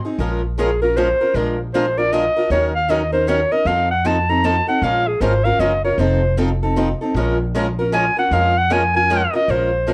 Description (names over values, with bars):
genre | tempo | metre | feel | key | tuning
acoustic string swing (jazz manouche) | 155 BPM | 3/4 | swing 62% on 8ths | Bb minor | A4 = 443 Hz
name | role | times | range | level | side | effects
picked steel-string acoustic guitar | accompaniment | 0.0-9.9 s | Eb3 to Bb4 | -25 LUFS | equal | none
picked swing-style acoustic guitar | accompaniment | 0.2-9.9 s | Eb3 to Bb4 | -28 LUFS | equal | none
upright bass | bass | 0.2-9.9 s | F1 to F2 | -24 LUFS | equal | none
breathy clarinet | melody | 0.6-9.9 s | Ab4 to Bb5 | -20 LUFS | equal | none
room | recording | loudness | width
light reverb | worn, warbling old tape, cassette tape, warbly pitch drift | -18 LUFS | mono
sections
0.2-9.5 A section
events
clarinet solo 0.2-9.5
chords
0.2 Bbm9; 1.3 Bb7; 2.5 Ebm7; 3.7 F7; 4.8 Bbm7; 6.0 F7; 7.2 Bbm7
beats
| 0.19 0.57 0.96 | 1.34 1.73 2.12 | 2.50 2.89 3.28 | 3.66 4.05 4.44 | 4.83 5.21 5.60 | 5.99 6.38 6.76 | 7.15 7.54 7.93 | 8.32 8.71 9.10 | 9.48 9.88